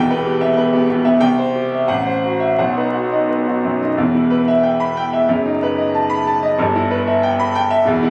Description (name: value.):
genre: classical, virtuoso piano study.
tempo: 86-95 BPM.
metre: 2/4.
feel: rubato.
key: E minor.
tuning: A4 = 440 Hz.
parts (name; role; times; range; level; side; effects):
clear concert grand piano; solo; 0.0-8.1 s; E1 to B5; -17 LUFS; equal; none.
room: wet large studio reverb, RT60 1.1 s.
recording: recorded on a phone in the room, studio reverb, vinyl crackle.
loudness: -17 LUFS.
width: mono.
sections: 0.0-4.0 A section; 4.0-8.1 B section.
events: none.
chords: 0.0 Em; 1.2 C; 1.9 F#m7b5/A; 2.6 B; 4.0 Em; 5.3 B7/F#; 6.6 Em/G.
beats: 0.58 | 1.23 1.90 | 2.59 3.29 | 3.98 4.63 | 5.29 5.94 | 6.59 7.22 | 7.86.